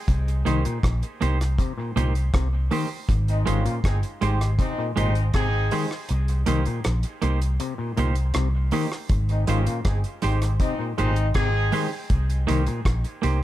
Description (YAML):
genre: roots reggae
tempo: 80 BPM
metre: 4/4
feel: straight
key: unclear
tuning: A4 = 440 Hz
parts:
  - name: vintage muted fingered electric bass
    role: bass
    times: 0.1-13.4 s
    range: G1 to C2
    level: -22 LUFS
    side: equal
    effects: none
  - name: deep reggae drum kit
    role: drums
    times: 0.1-13.4 s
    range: hi-hat, kick drum, rim click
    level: -26 LUFS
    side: equal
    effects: none
  - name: semi-hollow electric guitar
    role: accompaniment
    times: 0.5-13.4 s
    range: Ab3 to C5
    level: -30 LUFS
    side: right 5 dB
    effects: spring reverb, dub echo
  - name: auto-wah clav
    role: arpeggios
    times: 0.5-12.8 s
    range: Bb2 to Eb3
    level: -29 LUFS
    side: left 4 dB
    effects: none
  - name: brilliant trombone section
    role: second line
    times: 3.3-11.9 s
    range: Ab3 to Ab4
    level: -31 LUFS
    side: left 1 dB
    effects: dub echo
room: light reverb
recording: none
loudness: -21 LUFS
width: side -14 dB against mid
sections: 0.0-13.4 A section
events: kick muted 6.1-9.1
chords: 0.1 Cm7; 3.1 Abmaj7; 6.1 Cm7; 9.1 Abmaj7; 12.1 Cm7